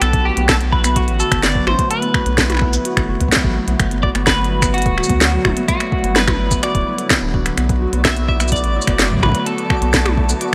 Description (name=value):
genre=IDM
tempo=127 BPM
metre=4/4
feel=straight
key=B minor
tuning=A4 = 439 Hz
part: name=twelve-string electric guitar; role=melody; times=0.0-10.5 s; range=F#4 to E5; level=-24 LUFS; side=equal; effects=vintage 12-bit sampler grit, delay
part: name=hollow soft pad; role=sustained chords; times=0.0-10.5 s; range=D3 to F#4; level=-29 LUFS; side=equal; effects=ensemble chorus
part: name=Celtic harp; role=arpeggios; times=0.0-10.5 s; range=F#3 to B4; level=-26 LUFS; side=equal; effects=none
part: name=round analog bass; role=bass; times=0.0-10.3 s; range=D1 to D2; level=-22 LUFS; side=equal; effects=none
part: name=glitchy drum kit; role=drums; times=0.0-10.5 s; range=finger snaps, hi-hat, shaker, snare drum, toms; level=-21 LUFS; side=equal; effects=overdrive
part: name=twinkling granular texture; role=texture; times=0.0, 8.0-10.5 s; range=D5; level=-36 LUFS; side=equal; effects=none
part: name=electronic kick drum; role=drums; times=0.1-10.3 s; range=none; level=-23 LUFS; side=equal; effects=none
room=light reverb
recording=bright 1980s-style digital production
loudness=-16 LUFS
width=mono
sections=0.0-10.5 A section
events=none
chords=0.0 Bm7; 3.8 Gmaj7; 7.6 Bm7